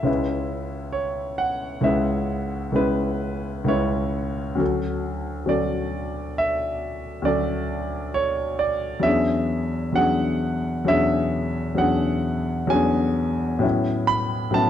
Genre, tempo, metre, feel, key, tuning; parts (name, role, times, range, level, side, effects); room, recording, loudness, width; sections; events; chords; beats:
classical, impressionist solo piano; 66 BPM; 5/4; rubato; A4 = 441 Hz
clear concert grand piano; solo; 0.0-14.7 s; C#2 to B5; -21 LUFS; equal
moderate recital hall reverb, RT60 1.5 s; close, detailed microphones; -21 LUFS; side -10 dB against mid
0.0-14.7 A section
0.1 C#m7; 4.6 Dmaj7; 9.1 E13; 13.6 A69
| 0.07 0.96 1.87 2.79 3.71 | 4.61 5.51 6.42 7.29 8.17 | 9.06 9.97 10.89 11.80 12.72 | 13.64 14.55